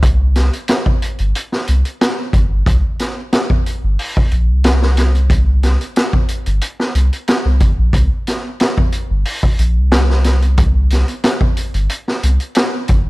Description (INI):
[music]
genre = trip hop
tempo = 91 BPM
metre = 4/4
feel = straight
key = unclear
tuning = A4 = 440 Hz
[part]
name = soft dub sub bass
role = bass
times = 0.0-13.1 s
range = G1 to C2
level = -13 LUFS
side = equal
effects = tube saturation
[part]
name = street-band drum kit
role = drums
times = 0.0-13.1 s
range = hi-hat, kick drum, snare drum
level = -16 LUFS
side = equal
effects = none
[sound]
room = little or no reverb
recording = dark, warm production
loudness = -13 LUFS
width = side -21 dB against mid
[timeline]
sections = 0.0-13.1 A section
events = none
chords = none